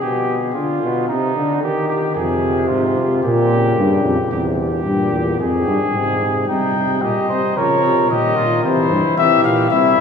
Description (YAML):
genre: classical, imitative canzona for brass ensemble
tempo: 112 BPM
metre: 4/4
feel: straight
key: unclear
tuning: A4 = 440 Hz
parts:
  - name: mellow trumpet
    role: second line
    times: 0.0-10.0 s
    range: Eb4 to C5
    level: -20 LUFS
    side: right 2 dB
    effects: none
  - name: breathy trombone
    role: accompaniment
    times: 0.0-10.0 s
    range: Ab2 to G3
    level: -21 LUFS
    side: left 1 dB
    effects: none
  - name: mellow bass trombone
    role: bass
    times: 2.2-10.0 s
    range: E2 to Db3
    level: -19 LUFS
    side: equal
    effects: none
  - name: warm trumpet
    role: melody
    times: 6.5-10.0 s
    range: C5 to G5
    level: -17 LUFS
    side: left 8 dB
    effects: none
room: wet cathedral reverb, RT60 6.9 s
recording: studio reverb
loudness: -15 LUFS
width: side -6 dB against mid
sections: 0.0-6.5 A section; 6.5-10.0 B section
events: none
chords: 0.0 G/B; 1.1 Cm; 2.2 Fm; 3.2 Gdim/Bb; 4.3 C/E; 5.4 Fm; 6.5 Cm; 7.6 Bbm; 8.6 C